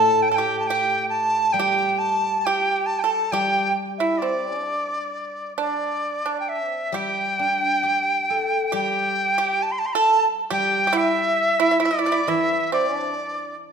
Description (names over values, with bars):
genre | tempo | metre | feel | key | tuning
chinese traditional, Chinese chamber ensemble | 68 BPM | 4/4 | rubato | unclear | A4 = 441 Hz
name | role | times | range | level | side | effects
bright reedy dizi | melody | 0.0-13.6 s | D5 to C6 | -21 LUFS | equal | none
pipa | second line | 0.0-13.6 s | D4 to A4 | -24 LUFS | right 5 dB | none
guzheng | accompaniment | 0.0-13.7 s | A2 to A4 | -30 LUFS | left 6 dB | none
room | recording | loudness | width
wet recital hall reverb, RT60 1.4 s | none | -19 LUFS | side -6 dB against mid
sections
0.0-6.9 A section; 6.9-13.7 B section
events
none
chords
none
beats
0.67 1.56 2.45 | 3.33 4.21 5.10 6.00 | 6.92 7.82 8.72 9.62 | 10.51 11.40 12.28 13.16